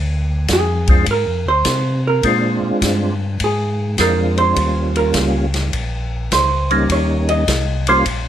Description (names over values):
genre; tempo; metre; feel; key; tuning
soul jazz organ trio; 103 BPM; 4/4; swing 68% on 8ths; unclear; A4 = 440 Hz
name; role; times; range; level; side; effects
mellow tonewheel organ; bass; 0.0-8.3 s; Bb1 to C3; -20 LUFS; equal; chorus vibrato, slow rotary speaker
vintage hollow-body jazz guitar; accompaniment; 0.5-8.0 s; Ab4 to Eb5; -19 LUFS; right 3 dB; none
vintage drum kit; drums; 0.5-8.2 s; hi-hat, kick drum, ride cymbal, snare drum; -22 LUFS; left 1 dB; none
percussive tonewheel organ; melody; 0.9-8.1 s; G3 to F4; -18 LUFS; equal; slow rotary speaker, chorus vibrato, plate reverb
room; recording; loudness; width
light reverb; none; -14 LUFS; side -10 dB against mid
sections
0.0-8.3 A section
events
hollow-body jazz guitar solo 0.0-8.3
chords
0.0 Bb9; 4.6 Eb9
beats
0.49 1.07 1.66 | 2.24 2.82 3.40 3.98 | 4.57 5.15 5.73 6.31 | 6.89 7.48 8.06